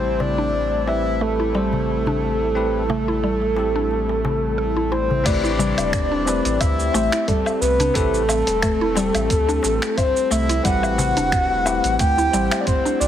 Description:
organic downtempo; 89 BPM; 4/4; swing 54% on 16ths; A minor; A4 = 439 Hz
breathy flute-like synth lead; melody; 0.0-13.1 s; A4 to G5; -21 LUFS; equal; lush chorus, tape echo
bell-like tine electric piano; accompaniment; 0.0-13.1 s; C4 to C5; -28 LUFS; left 4 dB; sidechain pumping, digital delay
airy breathy pad; sustained chords; 0.0-13.1 s; G3 to E4; -29 LUFS; right 1 dB; chorus, sidechain pumping
mallet-like synth pluck; arpeggios; 0.0-13.0 s; G3 to A4; -26 LUFS; equal; chorus, digital delay
warm sub bass; bass; 0.0-13.1 s; E1 to D2; -26 LUFS; equal; sidechain pumping
darbuka; percussion; 0.2-13.0 s; -29 LUFS; left 2 dB
dusty soul sampler-style drum kit; drums; 5.3-13.1 s; cabasa, crash cymbal, finger snaps, hi-hat, woodblock; -26 LUFS; equal
electronic kick drum; drums; 5.3-12.8 s; -22 LUFS; equal
light reverb; heavily compressed radio sound, multiband compression; -17 LUFS; side -10 dB against mid
0.0-5.3 A section; 5.3-13.1 B section
filter sweep on tine electric piano 0.0-5.3
0.0 Am7

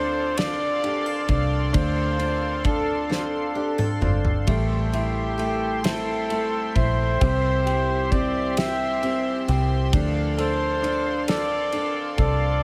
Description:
six-eight pop ballad; 44 BPM (dotted quarters); 6/8; straight; D minor; A4 = 440 Hz
clear flugelhorn; melody; 0.0-12.6 s; G4 to E5; -29 LUFS; equal
clear concert grand piano; accompaniment; 0.0-12.6 s; A3 to A4; -30 LUFS; equal
chorused pulse-width pad; sustained chords; 0.0-12.6 s; G4 to C6; -34 LUFS; equal
picked steel-string acoustic guitar; arpeggios; 0.0-12.6 s; F3 to A4; -37 LUFS; equal
fingered electric bass; bass; 0.0-12.6 s; G1 to D2; -28 LUFS; equal
loose indie drum kit; drums; 0.4-12.4 s; kick drum, ride cymbal, snare drum, toms; -31 LUFS; equal
light reverb, small room ambience; -23 LUFS; mono
0.0-12.6 A section
drum fill 3.1-4.5
0.0 Dm7; 4.5 Am7; 7.2 C; 9.9 Dm7

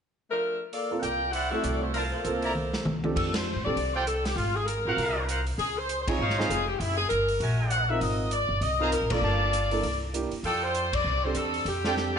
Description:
jazz, big band swing; 198 BPM; 4/4; swing 60% on 8ths; F major; A4 = 440 Hz
mellow saxophone section; melody; 0.3-12.2 s; F3 to G5; -28 LUFS; left 2 dB
swinging big-band drum kit; drums; 0.7-12.1 s; crash cymbal, hi-hat, kick drum, ride cymbal, snare drum, toms; -35 LUFS; equal
warm concert grand piano; accompaniment; 0.9-12.2 s; F3 to Bb4; -33 LUFS; right 3 dB
upright bass; bass; 1.0-12.2 s; F1 to C3; -31 LUFS; equal
brilliant trumpet section; stabs; 1.3-12.2 s; Eb4 to Bb5; -32 LUFS; right 2 dB
moderate recital hall reverb, RT60 1.7 s; nothing above 10.5 kHz; -25 LUFS; side -7 dB against mid
0.7-3.2 A section; 3.2-12.2 B section
drum fill 2.5-3.2, 12.0; band accent 3.3, 6.0, 9.1, 10.9
0.0 Fadd11; 0.7 Gm11; 1.3 D9; 1.9 Bbmaj9#11/C; 2.5 Csus2; 4.4 Ab13; 5.6 Dbmaj9; 6.8 Gb9; 8.0 Ab69; 9.2 Gm9; 9.8 C9; 10.4 F69

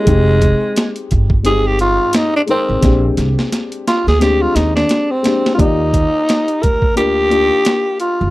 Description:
hip hop, jazz-hop; 87 BPM; 4/4; swing 60% on 16ths; Eb major; A4 = 441 Hz
growling tenor saxophone; melody; 0.0-8.3 s; Ab3 to Bb4; -15 LUFS; equal
dark upright piano; accompaniment; 0.0-8.3 s; G3 to D5; -20 LUFS; left 3 dB
upright bass; bass; 0.1-8.3 s; F1 to Eb2; -17 LUFS; right 1 dB
boom bap sampler-style drum kit; drums; 0.1-8.2 s; hi-hat, kick drum, snare drum; -17 LUFS; equal
little or no reverb; dry, close 1970s-style studio recording; -12 LUFS; side -18 dB against mid
0.0-5.6 A section; 5.6-8.3 B section
tenor saxophone solo 0.0-5.6; drum fill 2.8-5.6
0.1 Fm9; 2.8 Bb13 (rootless); 5.6 Ebmaj9

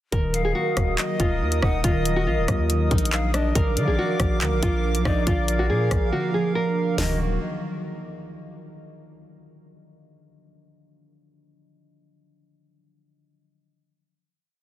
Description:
hip hop, drill; 140 BPM; 4/4; half-time; Eb harmonic minor; A4 = 440 Hz
nylon-string guitar; melody; 0.1-7.2 s; D4 to Bb4; -28 LUFS; equal; low-pass filter, tape echo
concert harp; accompaniment; 0.1-7.2 s; D3 to Eb4; -28 LUFS; right 2 dB; low-pass filter
hollow soft pad; sustained chords; 0.1-7.2 s; Eb3 to Eb6; -32 LUFS; right 3 dB; chorus
long sustained 808-style bass; bass; 0.1-7.4 s; Eb1 to D3; -25 LUFS; equal
drill drum kit; drums; 0.1-7.1 s; handclaps, hi-hat, kick drum, rim click, snare drum, toms; -24 LUFS; equal
breathy bright large pan pipes; second line; 0.3-7.2 s; Bb4 to Gb5; -32 LUFS; left 4 dB; tape echo
little or no reverb; dense, heavily limited modern master; -20 LUFS; side -13 dB against mid
0.1-7.0 hook; 7.0-8.7 final chord
silent gap 6.1-7.0
0.1 Ebm; 3.6 Bb; 7.0 Ebm

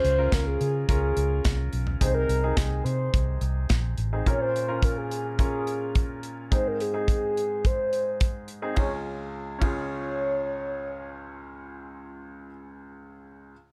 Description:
piano-driven pop; 107 BPM; 4/4; straight; Db major; A4 = 438 Hz
mellow horn-like synth lead; melody; 0.0-11.8 s; Ab4 to Db5; -31 LUFS; equal; chorus, plate reverb
clear baby grand piano; accompaniment; 0.0-13.5 s; Db2 to Bb4; -36 LUFS; equal; plate reverb
vintage muted fingered electric bass; bass; 0.0-4.2 s; A1 to Db3; -29 LUFS; equal
modern studio drum kit; drums; 0.0-9.8 s; hi-hat, kick drum, ride cymbal, snare drum, toms; -28 LUFS; equal
light reverb; dark, warm production; -26 LUFS; mono
0.0-8.8 A section; 8.8-11.0 B section
0.0 Db; 2.0 Ab/C; 4.3 Bbm; 6.5 Ab; 8.8 Db

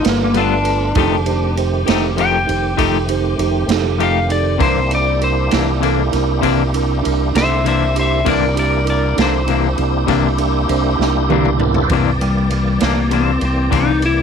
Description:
slow blues; 66 BPM (dotted quarters); 12/8; straight; C mixolydian; A4 = 439 Hz
clean lap steel guitar; melody; 0.0-14.2 s; G3 to G5; -20 LUFS; left 4 dB
tine electric piano; accompaniment; 0.0-11.8 s; D4 to C5; -22 LUFS; right 16 dB; medium stereo tremolo
tonewheel organ; sustained chords; 0.0-14.2 s; Eb3 to D5; -22 LUFS; equal; slow rotary speaker, chorus vibrato
fingered electric bass; bass; 0.0-14.2 s; F1 to C2; -19 LUFS; equal
swinging big-band drum kit; drums; 0.0-14.2 s; kick drum, ride cymbal, snare drum, toms; -23 LUFS; right 5 dB
semi-hollow electric guitar; accompaniment; 0.3-13.9 s; C3 to A4; -19 LUFS; left 14 dB; tremolo
little or no reverb; 1960s-style stereo with parts hard left and right; -14 LUFS; side -7 dB against mid
0.0-11.9 A section; 11.9-14.2 B section
electric slide guitar solo 0.0-11.9; drum fill 11.0-11.9
0.0 G9; 1.0 F9; 4.6 C9

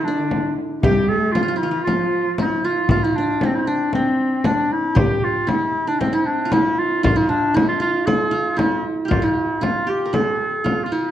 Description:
Arabic maqam ensemble; 116 BPM; 4/4; straight; F maqam rast; A4 = 441 Hz
bright clarinet; melody; 0.0-11.1 s; C4 to A4-48c; -21 LUFS; equal
qanun; second line; 0.0-11.1 s; C4 to Bb4; -23 LUFS; right 2 dB
warm studio cello section; second line; 0.0-2.6 s; D3 to Ab3+50c; -25 LUFS; left 1 dB
frame drum; percussion; 0.3-10.8 s; -22 LUFS; left 1 dB
moderate recital hall reverb, RT60 1.3 s; dark, warm production; -17 LUFS; side -11 dB against mid
0.0-2.9 A section; 2.9-11.1 B section

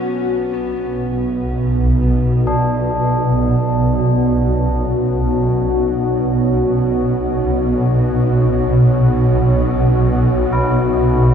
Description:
dark ambient drone; free time; B minor; A4 = 440 Hz
deep dark ambient pad; sustained chords; 0.0-11.3 s; B3 to C#5; -19 LUFS; left 1 dB; chorus, built-in reverb
swarming drone; drone; 0.9-11.3 s; B1 to B2; -15 LUFS; right 1 dB; built-in reverb
tubular bells; arpeggios; 2.5-11.3 s; D4 to E4; -24 LUFS; equal; ping-pong delay
moderate huge ambient reverb, RT60 7.4 s; -14 LUFS; side -8 dB against mid
0.0-11.3 A section
0.0 B5

